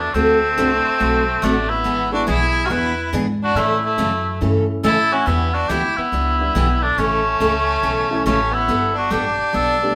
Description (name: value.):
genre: country, western swing.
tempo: 140 BPM.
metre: 4/4.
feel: swing 65% on 8ths.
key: unclear.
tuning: A4 = 440 Hz.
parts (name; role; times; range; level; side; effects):
warm cor anglais; melody; 0.0-9.9 s; C4 to B4; -22 LUFS; equal; none.
clear fiddle; second line; 0.0-9.9 s; A3 to F#4; -25 LUFS; equal; none.
upright bass; bass; 0.0-9.9 s; G1 to A2; -26 LUFS; equal; none.
picked steel-string acoustic guitar; accompaniment; 0.1-9.8 s; C#3 to A4; -25 LUFS; equal; none.
dark upright piano; accompaniment; 0.6-9.9 s; E3 to A4; -28 LUFS; equal; none.
room: wet studio reverb, RT60 0.8 s.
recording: band playing live in one room.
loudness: -18 LUFS.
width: mono.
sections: 0.0-9.9 A section.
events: none.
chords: 0.1 D7; 1.9 E7; 3.6 A; 5.3 Em7; 7.0 A; 8.7 Gadd9.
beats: | 0.14 0.57 1.00 1.42 | 1.85 2.28 2.71 3.13 | 3.56 3.98 4.41 4.84 | 5.27 5.69 6.12 6.55 | 6.97 7.40 7.83 8.26 | 8.69 9.11 9.54.